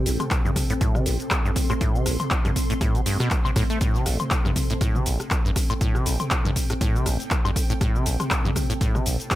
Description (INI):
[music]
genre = acid house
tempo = 120 BPM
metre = 4/4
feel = swing 56% on 16ths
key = A minor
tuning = A4 = 440 Hz
[part]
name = acid bass, saw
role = riff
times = 0.0-9.2 s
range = A1 to A3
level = -26 LUFS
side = equal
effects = tube saturation, analog chorus, digital delay
[part]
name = granular cloud pad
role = texture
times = 0.0-9.4 s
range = C4 to C6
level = -32 LUFS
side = equal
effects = built-in reverb, sidechain pumping
[part]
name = electro analog drum machine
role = drums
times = 0.1-9.4 s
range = handclaps, hi-hat, rim click, shaker, toms, woodblock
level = -27 LUFS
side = left 1 dB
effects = none
[part]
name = electronic kick drum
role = drums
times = 0.3-9.4 s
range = none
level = -23 LUFS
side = equal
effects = none
[sound]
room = light reverb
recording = none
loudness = -20 LUFS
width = side -15 dB against mid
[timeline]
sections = 0.0-9.4 A section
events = none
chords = 0.0 Am7